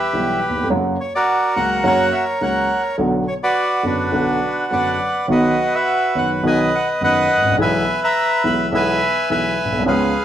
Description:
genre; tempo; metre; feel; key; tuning
tango; 105 BPM; 4/4; rubato; B minor, B major from 5.3 s; A4 = 440 Hz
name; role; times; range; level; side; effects
bandoneon; melody; 0.0-10.2 s; D4 to B5; -17 LUFS; equal; none
dark upright piano; accompaniment; 0.1-10.1 s; F#1 to G#4; -20 LUFS; equal; none
room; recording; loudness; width
moderate stone room reverb, RT60 1.0 s; band playing live in one room; -16 LUFS; side -10 dB against mid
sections
0.0-5.3 A section; 5.3-10.2 B section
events
none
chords
0.0 Em; 0.7 F#; 3.0 Bm; 5.3 B; 7.6 E/B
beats
0.15 | 0.71 1.28 1.85 2.42 | 2.99 3.56 4.13 4.71 | 5.30 5.87 6.44 7.02 | 7.59 8.15 8.73 9.30 | 9.87

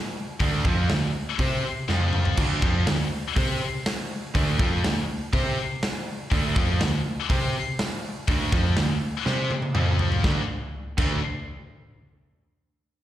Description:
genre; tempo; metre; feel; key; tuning
hard rock; 122 BPM; 4/4; straight; D minor; A4 = 443 Hz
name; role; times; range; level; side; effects
heavy high-gain guitar; riff; 0.4-11.2 s; D3 to C5; -30 LUFS; left 9 dB; distortion, slapback echo
overdriven semi-hollow guitar; riff; 0.4-11.2 s; D3 to C5; -30 LUFS; right 7 dB; slapback echo
hollow-body short-scale picked electric bass; bass; 0.4-11.2 s; D2 to C3; -26 LUFS; equal; none
big rock drum kit; drums; 0.4-11.1 s; crash cymbal, hi-hat, kick drum, snare drum, toms; -26 LUFS; equal; none
room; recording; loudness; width
small room reverb; live gig heard through the venue's PA, recital hall reverb; -22 LUFS; side -12 dB against mid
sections
0.0-2.4 A section; 2.4-10.2 A section; 10.2-12.2 B section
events
drum fill 1.9-2.4, 9.3-10.2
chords
0.0 Dm; 1.9 F5; 2.4 Dm; 9.8 F5; 10.2 D5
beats
| 0.41 0.90 1.39 1.89 | 2.38 2.87 3.36 3.85 | 4.34 4.84 5.33 5.82 | 6.31 6.80 7.29 7.79 | 8.28 8.77 9.26 9.75 | 10.24 10.73

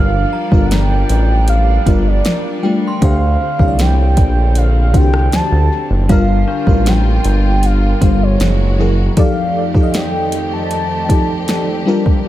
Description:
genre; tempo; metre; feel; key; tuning
contemporary R&B; 78 BPM; 4/4; straight; G minor; A4 = 440 Hz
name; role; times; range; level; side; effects
warm velvety synth lead; melody; 0.0-11.8 s; C#5 to A5; -21 LUFS; right 1 dB; chorus, dub echo
FM electric piano with soft pad layer; accompaniment; 0.0-12.3 s; D3 to Eb5; -18 LUFS; left 2 dB; chorus, dub echo
warm studio string section; sustained chords; 0.0-12.3 s; F2 to D5; -25 LUFS; right 1 dB; none
smooth synth bass; bass; 0.0-9.1 s; F#1 to D2; -13 LUFS; equal; none
synth chime; texture; 0.3-8.7 s; D4 to C6; -30 LUFS; left 1 dB; ensemble chorus, tremolo, dub echo
smooth R&B drum kit; drums; 0.5-12.2 s; hi-hat, kick drum, rim click, snare drum; -16 LUFS; equal; none
room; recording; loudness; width
little or no reverb; echo-heavy mix; -11 LUFS; side -14 dB against mid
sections
0.0-12.3 A section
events
none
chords
0.0 Gm7; 3.0 D7sus4; 6.1 Gm7; 8.4 F#9; 9.2 F13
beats
0.71 1.48 2.25 | 3.02 3.79 4.55 5.32 | 6.09 6.86 7.63 8.40 | 9.17 9.94 10.71 11.48 | 12.25

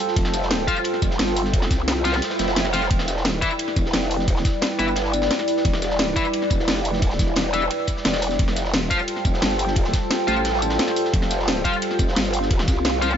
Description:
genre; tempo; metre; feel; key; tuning
dark technical drum and bass; 175 BPM; 4/4; straight; unclear; A4 = 440 Hz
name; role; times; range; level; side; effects
dark analog pad; sustained chords; 0.0-13.2 s; G3 to D5; -28 LUFS; left 1 dB; chorus, phaser, sidechain pumping
crunchy breakbeat drum kit; drums; 0.0-13.1 s; ride cymbal, snare drum; -32 LUFS; equal; high-pass filter on cymbals, high-pass filter on snare, high-pass filter on room
warbly tape-like pad; texture; 0.0-13.2 s; E4 to G5; -27 LUFS; right 2 dB; chorus, built-in reverb, sidechain pumping
growl bass; bass; 0.2-13.2 s; E1 to C2; -24 LUFS; equal; chorus, overdrive
drum and bass drum kit; drums; 0.2-13.2 s; hi-hat, ride cymbal, snare drum, tambourine; -26 LUFS; equal; none
electronic kick drum; drums; 0.2-12.7 s; none; -22 LUFS; equal; none
high-gain distorted guitar; stabs; 0.7-13.1 s; E4 to F5; -27 LUFS; left 3 dB; distortion, tape echo
swell; sound effects; 2.3-2.9 s; none; -31 LUFS; right 1 dB; none
room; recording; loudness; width
light reverb, digital ambience; nothing above 7.7 kHz; -19 LUFS; side -8 dB against mid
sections
0.0-13.2 A section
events
swell 2.3-2.9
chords
0.0 Fadd9; 2.9 Em7; 8.4 Fadd9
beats
| 0.16 0.51 0.85 1.19 | 1.53 1.88 2.22 2.56 | 2.91 3.25 3.59 3.94 | 4.28 4.62 4.96 5.31 | 5.65 5.99 6.33 6.68 | 7.02 7.36 7.71 8.05 | 8.39 8.73 9.08 9.42 | 9.76 10.11 10.45 10.79 | 11.13 11.48 11.82 12.16 | 12.51 12.85

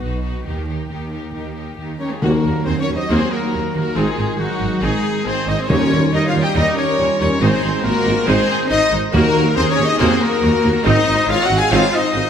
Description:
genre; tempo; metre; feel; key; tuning
cinematic, heroic adventure film score; 139 BPM; 4/4; straight; Eb dorian; A4 = 441 Hz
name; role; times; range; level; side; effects
warm chamber violin section; melody; 0.0-12.3 s; Gb4 to Ab5; -28 LUFS; left 5 dB; none
rich symphonic violin section; second line; 0.0-12.3 s; Eb4 to F5; -27 LUFS; left 3 dB; none
bright symphonic viola section; accompaniment; 0.0-12.2 s; Eb3 to Gb4; -26 LUFS; equal; none
mellow French horn section; sustained chords; 0.0-12.3 s; Gb3 to Ab4; -25 LUFS; left 3 dB; none
warm trumpet section; stabs; 0.0-12.3 s; Gb4 to Ab5; -23 LUFS; left 1 dB; none
rich symphonic double bass section; bass; 0.0-12.2 s; Ab1 to Eb2; -23 LUFS; right 2 dB; none
warm symphonic cello section; bass; 0.0-12.3 s; B2 to Ab4; -25 LUFS; right 2 dB; none
mellow flute section; second line; 2.0-12.3 s; Gb4 to Ab5; -26 LUFS; left 3 dB; none
warm trombone section; sustained chords; 2.2-11.9 s; Eb3 to C4; -27 LUFS; right 2 dB; none
warm tuba; bass; 2.2-12.2 s; Ab1 to Eb2; -25 LUFS; right 2 dB; none
timpani; percussion; 2.2-2.8, 5.7-6.3, 9.1-9.7 s; Eb3; -22 LUFS; left 1 dB; none
mellow clarinet; second line; 3.1-12.3 s; C4 to Ab4; -28 LUFS; left 1 dB; none
room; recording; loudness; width
wet scoring stage reverb, RT60 2.0 s; none; -14 LUFS; side -8 dB against mid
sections
0.0-2.2 A section; 2.2-12.3 B section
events
none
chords
0.5 Eb; 2.2 Ebm; 4.0 Ab; 5.7 Eb7; 7.4 Ab; 9.1 Ebm; 10.9 Ab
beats
0.03 | 0.47 0.91 1.35 1.79 | 2.23 2.67 3.10 3.53 | 3.97 4.40 4.83 5.27 | 5.70 6.13 6.56 6.99 | 7.42 7.85 8.28 8.71 | 9.14 9.57 10.00 10.43 | 10.86 11.29 11.72 12.16

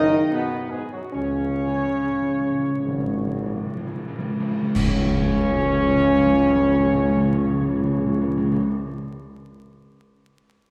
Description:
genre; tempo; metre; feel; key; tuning
classical, ceremonial fanfare; 59-79 BPM; 4/4; straight; unclear; A4 = 440 Hz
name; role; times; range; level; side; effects
dark trumpet section; melody; 0.0-8.6 s; Gb4 to Eb5; -34 LUFS; equal; none
dark trombone section; sustained chords; 0.0-8.6 s; Gb2 to Eb3; -33 LUFS; equal; none
mellow French horn section; sustained chords; 0.0-8.6 s; Gb3 to Eb4; -25 LUFS; equal; none
warm tuba; bass; 0.0-8.6 s; Gb1 to Db2; -30 LUFS; equal; none
cymbal swell, clash cymbals and concert bass drum; percussion; 1.1-6.7 s; none; -32 LUFS; equal; none
timpani; percussion; 1.1-8.7 s; Db3; -27 LUFS; equal; none
room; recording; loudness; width
wet scoring stage reverb, RT60 1.9 s; heard from further back in the room, vinyl crackle; -22 LUFS; mono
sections
0.0-4.8 A section; 4.8-8.7 B section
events
slowing down 0.0-4.8; timpani fill 1.1-4.8; band accent 4.8-5.7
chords
0.0 Cb; 1.1 Db5; 4.8 N.C.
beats
0.32 | 1.14 1.98 2.85 3.76 | 4.76 5.74 6.73 7.72

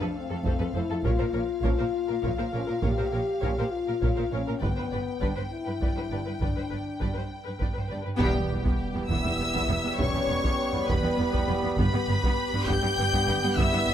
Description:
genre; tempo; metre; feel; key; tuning
cinematic, epic orchestral film score; 67 BPM (dotted quarters); 6/8; straight; E dorian from 8.2 s; A4 = 440 Hz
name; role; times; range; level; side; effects
warm symphonic violin section; melody; 0.0-13.9 s; F5 to G6; -34 LUFS; left 2 dB; none
rich symphonic violin section; second line; 0.0-13.9 s; G4 to G5; -35 LUFS; left 4 dB; none
rich symphonic viola section; accompaniment; 0.0-13.9 s; B3 to B4; -35 LUFS; equal; none
clear trombone section; sustained chords; 0.0-13.9 s; F3 to D4; -35 LUFS; right 4 dB; none
mellow French horn section; sustained chords; 0.0-13.9 s; G3 to G4; -32 LUFS; left 5 dB; none
clear symphonic cello section; bass; 0.0-13.9 s; E2 to Bb2; -32 LUFS; right 2 dB; none
rich symphonic double bass section; bass; 0.4-13.9 s; E1 to Bb1; -33 LUFS; right 2 dB; none
taiko ensemble; drums; 0.5-13.9 s; none; -30 LUFS; equal; none
timpani; percussion; 8.2-9.1 s; E2; -35 LUFS; equal; none
sub drop; sound effects; 8.4-10.0 s; none; -40 LUFS; equal; none
room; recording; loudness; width
light reverb; close, detailed microphones; -24 LUFS; side -10 dB against mid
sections
0.0-8.2 A section; 8.2-13.9 B section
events
band accent 8.2-8.8; impact 8.2-10.0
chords
0.0 F; 1.0 Bbm; 4.6 G; 8.2 Em; 11.8 G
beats
0.15 | 1.04 1.94 | 2.84 3.73 | 4.63 5.52 | 6.42 7.31 | 8.21 9.10 | 10.00 10.90 | 11.79 12.69 | 13.58

